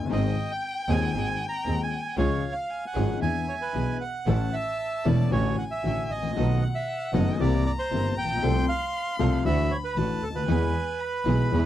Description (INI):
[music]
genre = tango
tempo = 116 BPM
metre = 4/4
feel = rubato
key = unclear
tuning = A4 = 440 Hz
[part]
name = warm violin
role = second line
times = 0.0-11.7 s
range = E5 to C6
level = -36 LUFS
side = left 3 dB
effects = none
[part]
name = warm grand piano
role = accompaniment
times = 0.0-11.7 s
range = D#1 to A4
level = -28 LUFS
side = left 6 dB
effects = none
[part]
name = warm double bass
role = bass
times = 0.0-11.7 s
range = E1 to E2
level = -27 LUFS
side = right 2 dB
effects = none
[part]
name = bandoneon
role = melody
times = 0.1-11.7 s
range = A4 to A#5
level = -30 LUFS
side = right 3 dB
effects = none
[part]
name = rich symphonic string section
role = stabs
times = 0.1-11.7 s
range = B3 to Bb4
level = -36 LUFS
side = right 6 dB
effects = none
[sound]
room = little or no reverb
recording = dry, close 1970s-style studio recording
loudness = -24 LUFS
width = side -12 dB against mid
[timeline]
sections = 0.0-4.3 A section; 4.3-11.7 B section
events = none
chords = 0.1 G#; 2.2 C#; 3.2 E7; 4.3 A; 5.3 Dmaj7/A; 6.4 B7; 7.4 C7; 8.4 F/C; 9.5 Dadd9; 10.5 E